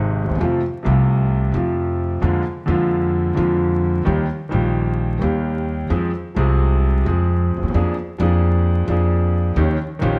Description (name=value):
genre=tango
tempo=131 BPM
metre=4/4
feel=rubato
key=unclear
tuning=A4 = 440 Hz
part: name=warm concert grand piano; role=accompaniment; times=0.0-10.2 s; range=Ab1 to Ab4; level=-22 LUFS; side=equal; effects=none
part: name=upright bass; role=bass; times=0.0-10.2 s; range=Ab1 to F2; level=-22 LUFS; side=equal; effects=none
room=moderate large studio reverb, RT60 1.3 s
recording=vinyl crackle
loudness=-19 LUFS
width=mono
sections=0.0-10.2 A section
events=none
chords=0.4 F; 2.2 Bb7/F; 4.1 Eb; 5.9 Fm; 7.7 Bb7/F; 9.6 Eb7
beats=| 0.41 0.86 1.32 1.77 | 2.23 2.69 3.14 3.60 | 4.06 4.52 4.98 5.44 | 5.91 6.37 6.83 7.29 | 7.74 8.20 8.65 9.11 | 9.56 10.02